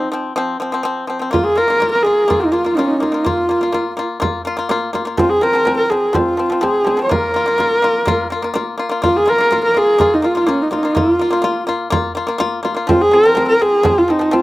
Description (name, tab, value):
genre	mongolian traditional, Mongolian folk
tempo	125 BPM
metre	4/4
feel	straight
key	unclear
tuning	A4 = 440 Hz
part	warm horsehead fiddle	melody	0.0-14.4 s	Db4 to Db5	-14 LUFS	equal	slapback echo
part	pipa	arpeggios	0.0-14.4 s	F3 to F4	-20 LUFS	left 2 dB	slapback echo
part	frame drum	percussion	1.3-14.4 s	none	-22 LUFS	right 2 dB	none
room	little or no reverb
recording	recorded outdoors, with no room sound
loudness	-13 LUFS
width	side -18 dB against mid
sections	0.0-9.0 A section; 9.0-14.4 A section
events	none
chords	0.0 F5; 1.3 Bb5; 5.2 F5; 7.1 Bb5; 12.9 F5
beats	0.37 0.85 | 1.33 1.81 2.29 2.77 | 3.26 3.74 4.22 4.70 | 5.18 5.67 6.15 6.63 | 7.11 7.59 8.08 8.56 | 9.04 9.52 10.00 10.48 | 10.96 11.45 11.93 12.41 | 12.89 13.37 13.85 14.33